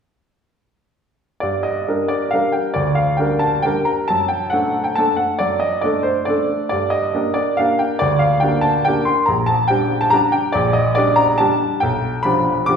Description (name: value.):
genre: classical, piano waltz.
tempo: 139 BPM.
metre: 3/4.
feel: uneven beats, rubato.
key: G minor.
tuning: A4 = 439 Hz.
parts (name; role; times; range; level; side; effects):
bright baby grand piano; solo; 1.4-12.8 s; Bb1 to D6; -15 LUFS; equal; none.
room: wet recital hall reverb, RT60 1.3 s.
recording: recorded in a church or concert hall.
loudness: -15 LUFS.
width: side -6 dB against mid.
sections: 1.4-12.8 A section.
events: none.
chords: 1.4 Gm; 4.1 D/F#; 6.7 Gm; 9.3 Gm/Bb; 11.8 G7/B.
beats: | 1.43 1.88 2.33 | 2.77 3.20 3.65 | 4.10 4.53 4.98 | 5.41 5.84 6.29 | 6.73 7.15 7.59 | 8.02 8.43 8.87 | 9.29 9.71 10.13 | 10.56 10.97 11.40 | 11.82 12.24 12.67.